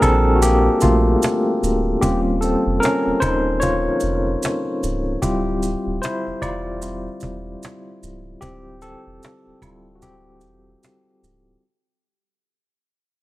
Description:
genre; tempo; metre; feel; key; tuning
lo-fi hip hop; 75 BPM; 4/4; swing 59% on 16ths; D minor; A4 = 438 Hz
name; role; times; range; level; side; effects
barky tine electric piano; accompaniment; 0.0-11.6 s; G3 to D5; -19 LUFS; left 1 dB; overdrive, medium tremolo, low-pass filter
soft dub sub bass; bass; 0.0-11.6 s; Db1 to Bb1; -23 LUFS; equal; none
cajon; drums; 0.0-11.5 s; none; -25 LUFS; equal; vintage 12-bit sampler grit
maracas and woodblock; percussion; 0.0-11.5 s; none; -31 LUFS; right 5 dB; none
room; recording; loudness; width
light reverb, studio ambience; none; -17 LUFS; side -17 dB against mid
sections
0.0-11.6 A section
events
fade-out 0.0-11.6; tine electric piano solo 0.0-11.6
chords
0.0 Gm7; 2.0 Eb13; 5.2 Dm11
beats
0.42 1.22 | 2.02 2.82 3.62 4.42 | 5.22 6.02 6.82 7.62 | 8.42 9.22 10.02 10.82

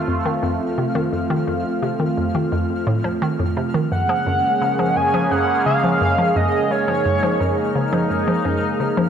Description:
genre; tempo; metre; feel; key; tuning
ambient, sequencer-driven space music; 86 BPM; 4/4; straight; unclear; A4 = 440 Hz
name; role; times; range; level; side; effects
sweeping resonant pad; sustained chords; 0.0-9.1 s; Db3 to Ab4; -21 LUFS; right 1 dB; chorus
hollow square pluck; riff; 0.0-9.1 s; F2 to F3; -22 LUFS; left 1 dB; chorus, analog delay
pulsing gated texture; texture; 0.0-9.1 s; F3 to F6; -32 LUFS; left 1 dB; chorus, built-in reverb
pulse-width lead; melody; 3.9-7.8 s; Db5 to Ab5; -21 LUFS; right 1 dB; chorus, analog delay
room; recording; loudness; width
wet plate reverb, RT60 3.1 s; faint mains hum; -17 LUFS; side -8 dB against mid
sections
0.0-9.1 A section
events
none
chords
0.0 F; 3.9 Gbadd9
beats
0.43 | 1.13 1.82 2.52 3.22 | 3.92 4.62 5.31 6.01 | 6.71 7.41 8.10 8.80

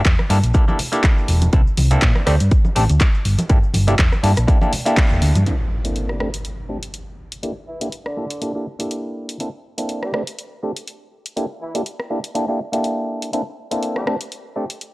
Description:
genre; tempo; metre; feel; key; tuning
filtered disco house; 122 BPM; 4/4; swing 55% on 16ths; G dorian; A4 = 439 Hz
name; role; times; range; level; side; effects
hollow-body short-scale fingered electric bass; bass; 0.1-5.4 s; E1 to Bb2; -16 LUFS; equal; sidechain pumping, low-pass filter
electronic kick drum; drums; 0.1-5.1 s; none; -15 LUFS; equal; studio reverb
house drum kit; drums; 0.1-14.9 s; handclaps, hi-hat, rim click; -25 LUFS; equal; sidechain pumping on hats, studio reverb
maracas and congas; percussion; 0.1-5.4 s; none; -26 LUFS; right 1 dB; sidechain pumping on perc, low-pass filter on perc
mellow clav; accompaniment; 0.3-14.6 s; A3 to A4; -23 LUFS; equal; phaser, sidechain pumping, low-pass filter
impact; sound effects; 5.5-7.4 s; none; -26 LUFS; equal; none
brilliant horn section; melody; 6.1-14.1 s; D3 to G4; -32 LUFS; equal; vintage 12-bit sampler grit, sidechain pumping, low-pass filter
room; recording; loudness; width
little or no reverb; dry, gritty hardware recording, transformer saturation, cassette tape; -17 LUFS; side -21 dB against mid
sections
0.0-5.5 A section; 5.5-14.9 B section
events
band accent 5.0; impact 5.5-7.4; filter sweep 5.5-14.9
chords
0.0 Gm69; 1.5 C13; 2.3 D7sus4; 3.3 Gm69; 5.5 C13; 6.2 D7sus4; 7.2 Gm69; 9.4 C13; 10.1 D7sus4; 11.1 Gm69; 13.3 C13; 14.1 D7sus4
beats
0.06 0.55 1.04 | 1.53 2.02 2.52 3.01 | 3.50 3.99 4.48 4.97 | 5.46 5.96 6.45 6.94 | 7.43 7.92 8.42 8.91 | 9.40 9.89 10.38 10.88 | 11.37 11.86 12.35 12.84 | 13.33 13.83 14.32 14.81

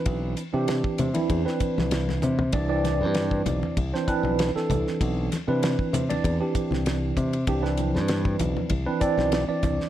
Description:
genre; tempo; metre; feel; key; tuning
electric jazz fusion; 97 BPM; 4/4; straight; C major; A4 = 440 Hz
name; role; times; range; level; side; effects
tine electric piano; accompaniment; 0.0-9.9 s; E3 to D5; -26 LUFS; right 3 dB; fast stereo tremolo, lush chorus, plate reverb
modern bright fingered electric bass; bass; 0.1-9.8 s; B1 to C3; -26 LUFS; left 1 dB; none
damped 70s drum kit; drums; 0.1-9.9 s; hi-hat, kick drum, ride cymbal, snare drum, toms; -30 LUFS; left 1 dB; none
congas; percussion; 1.0-9.8 s; none; -32 LUFS; left 5 dB; none
room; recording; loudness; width
moderate studio reverb, RT60 0.7 s; none; -22 LUFS; side -12 dB against mid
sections
0.0-9.9 A section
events
drum fill 2.2-2.5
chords
0.0 Cmaj9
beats
| 0.06 0.68 1.30 1.92 | 2.54 3.15 3.77 4.39 | 5.01 5.62 6.24 6.86 | 7.47 8.09 8.71 9.32

